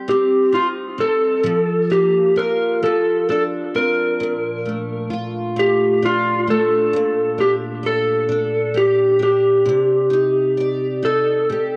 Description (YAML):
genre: pop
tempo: 44 BPM (dotted quarters)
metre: 6/8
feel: straight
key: Bb major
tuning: A4 = 440 Hz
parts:
  - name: picked steel-string acoustic guitar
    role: accompaniment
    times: 0.0-11.8 s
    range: Bb2 to D5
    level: -26 LUFS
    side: equal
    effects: double-tracked, cassette tape
  - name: electric slide guitar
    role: melody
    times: 0.1-11.8 s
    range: F4 to Bb4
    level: -19 LUFS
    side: equal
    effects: cassette tape, analog delay
room: moderate spring reverb, RT60 2.5 s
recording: home recording on cassette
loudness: -18 LUFS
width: mono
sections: 0.0-11.8 A section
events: none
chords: 0.0 Cm/G; 1.4 Bb5/F; 2.8 F5; 4.2 Bbmaj7; 6.9 Gmadd9/Bb; 9.7 Cmadd9